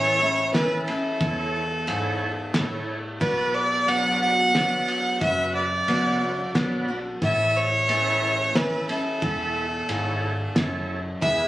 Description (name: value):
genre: honky-tonk and classic country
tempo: 90 BPM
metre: 3/4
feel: straight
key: A major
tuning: A4 = 435 Hz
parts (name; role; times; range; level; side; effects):
- clear fiddle; second line; 0.0-11.5 s; A4 to F#5; -23 LUFS; right 1 dB; none
- overdriven tonewheel organ; accompaniment; 0.0-11.5 s; E4 to E5; -32 LUFS; right 2 dB; slow rotary speaker, chorus vibrato
- picked steel-string acoustic guitar; accompaniment; 0.0-11.5 s; E2 to F#4; -28 LUFS; left 1 dB; none
- vintage muted fingered electric bass; bass; 0.0-11.5 s; E1 to E2; -33 LUFS; equal; none
- cloth-damped thuddy drum kit; drums; 0.5-11.4 s; kick drum, ride cymbal, snare drum; -30 LUFS; equal; none
room: moderate studio reverb, RT60 0.9 s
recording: recorded on a phone in the room, club ambience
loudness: -21 LUFS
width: side -15 dB against mid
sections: 0.0-11.5 A section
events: fiddle solo 0.0-11.5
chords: 0.0 A; 3.2 Bm; 7.2 A